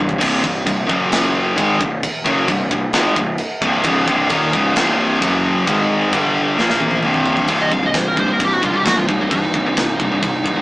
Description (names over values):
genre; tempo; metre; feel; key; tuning
heavy metal; 132 BPM; 4/4; straight; C minor; A4 = 436 Hz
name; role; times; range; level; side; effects
high-gain distorted guitar; riff; 0.0-10.6 s; C2 to Bb3; -18 LUFS; left 1 dB; distortion
sludgy distorted guitar; riff; 0.0-10.6 s; C2 to Bb3; -24 LUFS; right 1 dB; none
thick fuzz guitar; riff; 0.0-10.6 s; C2 to Bb3; -27 LUFS; equal; none
fuzz picked electric bass; bass; 0.0-10.6 s; C1 to Bb1; -23 LUFS; equal; overdrive
tight metal drum kit; drums; 0.1-10.6 s; china cymbal, crash cymbal, kick drum, snare drum, toms; -22 LUFS; equal; none
high-gain lead guitar; melody; 7.5-10.6 s; Eb4 to F5; -19 LUFS; right 1 dB; distortion
room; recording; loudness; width
moderate studio reverb, RT60 0.6 s; rough rehearsal-room recording, small speaker sound; -14 LUFS; side -21 dB against mid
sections
0.0-7.5 A section; 7.5-10.6 B section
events
drum fill 0.0, 6.6-7.5; half time 0.0-7.5; lead electric guitar solo 7.5-10.6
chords
0.0 C5; 0.9 F#5; 1.6 Cm; 5.2 F#5; 5.7 Ab5; 6.1 G5; 6.6 Bb5; 7.0 C5